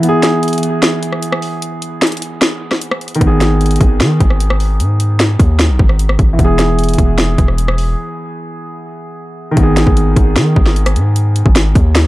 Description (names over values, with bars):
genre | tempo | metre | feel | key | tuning
hip hop, trap | 151 BPM | 4/4 | half-time | G# minor | A4 = 440 Hz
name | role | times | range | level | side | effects
dark baby grand piano | accompaniment | 0.0-12.1 s | D#3 to G#4 | -17 LUFS | right 1 dB | dub echo
trap drum kit | drums | 0.0-12.0 s | hi-hat, kick drum, rim click, snare drum | -14 LUFS | equal | overdrive
hard-hitting 808-style bass | bass | 3.2-12.1 s | E1 to D#3 | -13 LUFS | equal | none
room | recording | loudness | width
little or no reverb | echo-heavy mix | -10 LUFS | side -17 dB against mid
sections
0.0-9.6 A section; 9.6-12.1 B section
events
break 0.0-3.2, 8.0-9.6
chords
0.0 E; 3.2 G#m; 6.4 E; 9.6 G#m